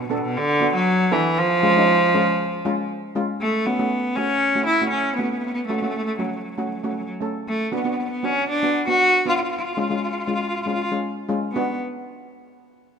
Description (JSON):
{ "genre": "calypso", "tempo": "118 BPM", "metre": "4/4", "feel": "straight", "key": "B minor", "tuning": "A4 = 440 Hz", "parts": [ { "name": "rich cello", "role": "melody", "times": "0.0-11.8 s", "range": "B2 to F#4", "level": "-20 LUFS", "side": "equal", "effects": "none" }, { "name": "steel pan", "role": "accompaniment", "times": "0.1-11.8 s", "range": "G#3 to A4", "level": "-25 LUFS", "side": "equal", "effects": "none" } ], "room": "moderate plate reverb, RT60 2.8 s", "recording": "minimal, uncompressed stereo recording", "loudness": "-19 LUFS", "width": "side -6 dB against mid", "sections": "0.0-3.4 A section; 3.4-11.5 B section; 11.5-13.0 C section", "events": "none", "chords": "0.0 Bm; 1.4 C#; 3.4 F#m; 7.5 Bm; 9.5 C#; 11.5 Bm" }